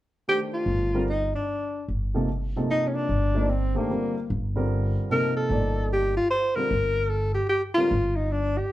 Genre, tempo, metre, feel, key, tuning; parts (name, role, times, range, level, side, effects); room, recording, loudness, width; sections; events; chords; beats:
modal jazz; 149 BPM; 3/4; swing 64% on 8ths; C dorian; A4 = 439 Hz
bright alto saxophone; melody; 0.3-8.7 s; Bb3 to C5; -25 LUFS; left 1 dB
warm concert grand piano; accompaniment; 0.3-7.9 s; C3 to D5; -29 LUFS; right 1 dB
upright bass; bass; 0.7-8.6 s; G1; -27 LUFS; equal
wet club reverb, RT60 0.9 s; heard from further back in the room; -23 LUFS; side -14 dB against mid
0.3-8.7 A section
0.3 Cm11
| 0.27 0.67 1.08 | 1.48 1.88 2.29 | 2.69 3.10 3.50 | 3.90 4.30 4.71 | 5.11 5.51 5.92 | 6.32 6.72 7.12 | 7.52 7.93 8.33